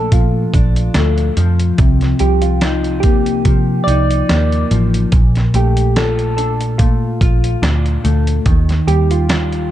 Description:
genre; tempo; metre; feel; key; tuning
indie pop, bedroom pop; 72 BPM; 4/4; swing 55% on 16ths; Bb major; A4 = 441 Hz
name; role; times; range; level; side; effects
soft electric-piano-like synth keys; melody; 0.0-9.7 s; F4 to D5; -21 LUFS; right 3 dB; wide subtle chorus, slapback echo
mellow electric guitar; accompaniment; 0.0-9.7 s; Bb2 to F4; -18 LUFS; left 2 dB; wide subtle chorus, warbly pitch drift
vintage muted picked electric bass; bass; 0.0-9.7 s; A1 to C3; -16 LUFS; equal; none
dusty soul sampler-style drum kit; drums; 0.1-9.7 s; hi-hat, kick drum, snare drum; -16 LUFS; equal; vintage 12-bit sampler grit
room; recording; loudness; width
light reverb; dark, warm production; -12 LUFS; side -12 dB against mid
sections
0.0-9.7 A section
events
none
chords
0.0 Bbmaj7; 1.8 Cm11; 5.1 Bbmaj7; 8.5 Ebmaj9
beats
0.12 0.96 | 1.79 2.63 3.46 4.29 | 5.13 5.96 6.80 7.63 | 8.46 9.30

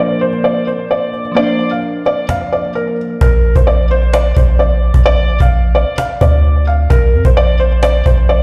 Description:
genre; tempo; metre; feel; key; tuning
hip hop, trap; 130 BPM; 4/4; half-time; Bb major; A4 = 440 Hz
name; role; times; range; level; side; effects
felt-muted upright piano; melody; 0.0-8.4 s; Bb4 to F5; -18 LUFS; equal; low-pass filter, digital delay
glassy digital keys; accompaniment; 0.0-3.2 s; F3 to C5; -21 LUFS; equal; chorus, low-pass filter
sweeping resonant pad; sustained chords; 0.0-2.2 s; Bb2 to F4; -32 LUFS; equal; chorus, low-pass filter
cajon; drums; 0.2-8.3 s; none; -20 LUFS; equal; none
long sustained 808-style bass; bass; 3.2-8.4 s; Bb1 to F2; -13 LUFS; equal; none
room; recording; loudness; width
light reverb, studio ambience; played on a big sound system in a bare room, large studio reverb; -13 LUFS; mono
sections
0.0-3.2 A section; 3.2-8.4 B section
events
stop 2.3-3.2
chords
0.0 Bb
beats
0.44 0.90 | 1.36 1.83 2.29 2.75 | 3.21 3.67 4.13 4.60 | 5.06 5.52 5.98 6.44 | 6.90 7.37 7.83 8.29

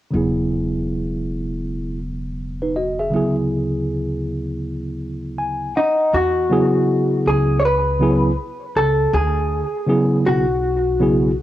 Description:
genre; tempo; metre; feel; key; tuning
hip hop; 80 BPM; 4/4; swing 62% on 16ths; E major; A4 = 440 Hz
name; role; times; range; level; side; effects
tine electric piano; accompaniment; 0.1-11.3 s; C#3 to G#5; -19 LUFS; right 1 dB; medium stereo tremolo, cassette tape, plate reverb
upright bass; bass; 0.1-11.3 s; E1 to E2; -24 LUFS; equal; none
hollow-body jazz guitar; melody; 5.8-11.3 s; D#4 to C#5; -19 LUFS; left 1 dB; cassette tape, plate reverb, analog delay
room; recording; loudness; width
moderate studio reverb, RT60 0.6 s; home recording on cassette; -17 LUFS; side -13 dB against mid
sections
0.1-6.1 A section; 6.1-11.4 B section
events
tine electric piano fill 5.0-6.1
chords
0.1 Eadd9; 3.1 Dmaj9; 5.8 N.C.; 6.1 Eadd9; 9.1 Dmaj9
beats
| 0.13 0.88 1.63 2.38 | 3.13 3.88 4.63 5.38 | 6.13 6.88 7.63 8.38 | 9.13 9.88 10.63

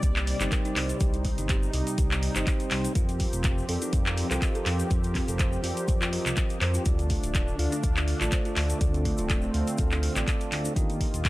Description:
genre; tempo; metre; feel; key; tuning
afro house; 123 BPM; 4/4; swing 54% on 16ths; unclear; A4 = 440 Hz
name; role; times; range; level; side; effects
warm analog pad; sustained chords; 0.0-11.3 s; C3 to D5; -34 LUFS; equal; chorus, sidechain pumping
kalimba; arpeggios; 0.0-10.8 s; G3 to Eb5; -36 LUFS; equal; sidechain pumping, tape echo
mellow tonewheel organ; stabs; 0.0-11.3 s; C4 to F5; -36 LUFS; right 2 dB; slow rotary speaker, sidechain pumping, tape echo
smooth synth bass; bass; 0.0-11.3 s; D1 to F2; -29 LUFS; equal; sidechain pumping
afro-pop drum kit; drums; 0.0-11.3 s; handclaps, hi-hat; -32 LUFS; equal; none
electronic kick drum; drums; 0.0-11.3 s; none; -27 LUFS; equal; none
egg shaker; percussion; 0.0-11.3 s; none; -41 LUFS; left 3 dB; none
room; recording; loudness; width
little or no reverb; dry, gritty hardware recording, transformer saturation; -24 LUFS; side -18 dB against mid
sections
0.0-11.3 A section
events
none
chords
0.0 Cm; 3.0 Fsus4; 6.9 Dm; 10.8 Ebadd9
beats
0.03 0.52 | 1.01 1.50 1.98 2.47 | 2.96 3.45 3.93 4.42 | 4.91 5.40 5.88 6.37 | 6.86 7.35 7.84 8.32 | 8.81 9.30 9.79 10.28 | 10.76 11.25

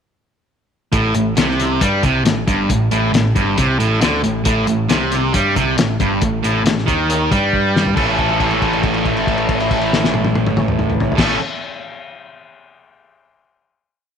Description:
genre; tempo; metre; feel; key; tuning
classic rock; 137 BPM; 4/4; straight; unclear; A4 = 440 Hz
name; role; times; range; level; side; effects
sludgy distorted guitar; riff; 0.9-11.4 s; G2 to A4; -16 LUFS; right 1 dB; overdrive
modern bright picked electric bass; bass; 0.9-11.4 s; G1 to G2; -24 LUFS; right 1 dB; none
cloth-damped thuddy drum kit; drums; 0.9-11.3 s; crash cymbal, hi-hat, kick drum, snare drum, toms; -19 LUFS; left 3 dB; none
room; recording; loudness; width
light reverb, small room ambience; 1960s-style stereo; -14 LUFS; side -7 dB against mid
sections
0.9-8.0 riff; 8.0-11.4 final chord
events
drum fill 7.5-8.0; held note 8.0-11.2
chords
0.9 Gsus24; 8.0 A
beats
| 0.93 1.37 1.81 2.25 | 2.70 3.14 3.58 4.02 | 4.46 4.90 5.34 5.78 | 6.22 6.66 7.09 7.53 | 7.96 8.40 8.84 9.27 | 9.70 10.14 10.57 11.01

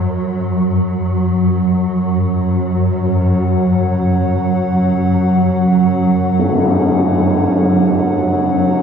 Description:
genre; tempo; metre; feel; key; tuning
dark ambient drone; free time; none; none; unclear; A4 = 438 Hz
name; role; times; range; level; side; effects
dark analog pad; sustained chords; 0.0-8.8 s; F#3 to F#5; -18 LUFS; left 1 dB; chorus
swarming drone; drone; 0.0-8.8 s; F#2 to F#3; -15 LUFS; right 1 dB; built-in reverb
tam-tam; percussion; 6.4-6.6 s; none; -16 LUFS; right 1 dB; low-pass filter on cymbals
room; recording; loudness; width
wet cathedral reverb, RT60 6.5 s; none; -13 LUFS; side -7 dB against mid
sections
0.5-8.8 A section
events
none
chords
0.5 F#5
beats
free time

